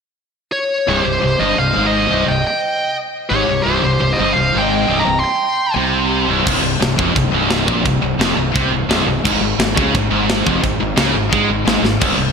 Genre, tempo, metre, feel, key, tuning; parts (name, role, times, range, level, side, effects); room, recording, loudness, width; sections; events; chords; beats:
heavy metal; 172 BPM; 4/4; straight; C phrygian; A4 = 438 Hz
high-gain lead guitar; melody; 0.5-5.7 s; C5 to C6; -18 LUFS; equal; distortion, ping-pong delay
high-gain lead guitar; second line; 0.9-5.8 s; G4 to G5; -24 LUFS; right 3 dB; distortion, ping-pong delay
heavy high-gain guitar; riff; 0.9-12.3 s; C2 to Ab3; -20 LUFS; left 9 dB; distortion
scooped high-gain guitar; riff; 0.9-12.3 s; C2 to Ab3; -20 LUFS; right 9 dB; distortion
fuzz fingered electric bass; bass; 0.9-12.3 s; C1 to Ab2; -22 LUFS; equal; overdrive
tight metal drum kit; drums; 6.5-12.1 s; china cymbal, crash cymbal, kick drum, snare drum; -18 LUFS; equal; gated reverb
moderate lush hall reverb, RT60 1.7 s; bright 1980s-style digital production; -14 LUFS; side -6 dB against mid
0.9-6.5 A section; 6.5-12.3 B section
drum fill 11.8
0.0 N.C.; 0.9 Cm; 6.5 C7sus4; 9.2 Fm
0.18 0.53 | 0.88 1.23 1.58 1.93 | 2.28 2.63 2.98 3.33 | 3.68 4.03 4.37 4.72 | 5.07 5.42 5.77 6.12 | 6.46 6.81 7.16 7.51 | 7.85 8.20 8.55 8.89 | 9.24 9.59 9.94 10.28 | 10.63 10.98 11.32 11.67 | 12.02